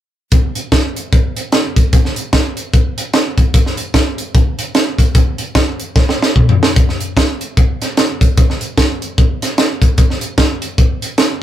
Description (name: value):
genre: gospel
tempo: 149 BPM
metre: 4/4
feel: swing 60% on 8ths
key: none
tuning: none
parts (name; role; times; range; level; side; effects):
- crisp fusion drum kit; drums; 0.3-11.3 s; hi-hat, kick drum, snare drum, toms; -12 LUFS; equal; none
room: moderate small room ambience, RT60 0.5 s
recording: rough rehearsal-room recording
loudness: -12 LUFS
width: side -12 dB against mid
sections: 0.3-6.8 A section; 6.8-11.4 B section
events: drum fill 6.0-6.8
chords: none